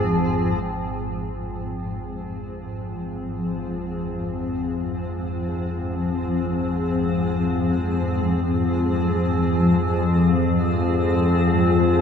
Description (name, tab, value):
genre	dark ambient drone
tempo	free time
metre	none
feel	none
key	F minor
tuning	A4 = 438 Hz
part	granular cloud pad	sustained chords	0.0-12.0 s	Ab2 to Ab4	-23 LUFS	left 1 dB	built-in reverb
part	carillon bells	arpeggios	0.0-0.6 s	Ab2	-41 LUFS	right 1 dB	tape echo
part	analog drone	drone	0.0-12.0 s	F2 to F3	-24 LUFS	left 1 dB	chorus
part	bronze singing bowl	texture	0.0-12.0 s	F4 to G5	-44 LUFS	right 4 dB	none
room	wet cathedral reverb, RT60 5.2 s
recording	none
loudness	-20 LUFS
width	side -7 dB against mid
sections	0.6-12.0 A section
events	fade-in on synth drone 0.6-12.0; fade-in on ambient pad 0.6-12.0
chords	0.0 Db (rootless); 0.6 Fm